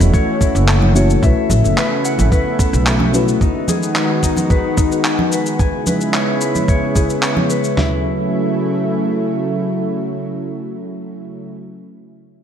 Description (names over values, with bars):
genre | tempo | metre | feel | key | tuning
sunset chillout | 110 BPM | 4/4 | straight | F# dorian | A4 = 441 Hz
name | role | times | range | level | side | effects
mellow FM electric piano | accompaniment | 0.0-3.4 s | A3 to C#5 | -22 LUFS | left 3 dB | chorus, auto-pan, tape echo
lush unison pad | sustained chords | 0.0-11.5 s | C#3 to F#4 | -19 LUFS | right 1 dB | chorus
Celtic harp | arpeggios | 0.0-10.4 s | D#4 to B5 | -23 LUFS | left 6 dB | low-pass filter, tape echo
upright bass | bass | 0.0-3.3 s | E1 to B1 | -14 LUFS | equal | tube saturation
electronic shaker and handclaps | drums | 0.0-7.7 s | none | -22 LUFS | equal | none
congas | percussion | 0.0-7.5 s | none | -23 LUFS | right 2 dB | none
dusty soul sampler-style drum kit | drums | 0.1-7.9 s | kick drum, snare drum, toms | -16 LUFS | right 1 dB | none
room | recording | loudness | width
light reverb | none | -14 LUFS | side -8 dB against mid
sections
0.0-7.8 A section; 7.8-12.1 B section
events
none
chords
0.0 F#m7; 1.2 B9sus4; 3.4 G#m7; 5.6 C#m7; 7.8 F#m7